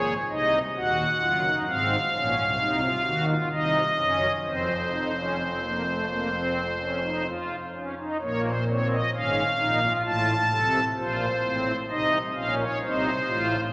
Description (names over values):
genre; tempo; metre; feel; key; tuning
classical, baroque-style 3-part fugue for pipe organ; 65 BPM; 4/4; straight; unclear; A4 = 439 Hz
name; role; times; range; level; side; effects
pipe organ, strings celeste; solo; 0.0-13.6 s; Eb1 to A5; -26 LUFS; equal; none
room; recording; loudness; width
wet church reverb, RT60 3.7 s; none; -26 LUFS; mono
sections
0.0-8.2 A section; 8.2-13.7 B section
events
none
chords
0.0 Ab; 0.8 Cdim/Eb; 4.5 F5; 8.2 Bbm; 10.1 F/A; 11.9 F7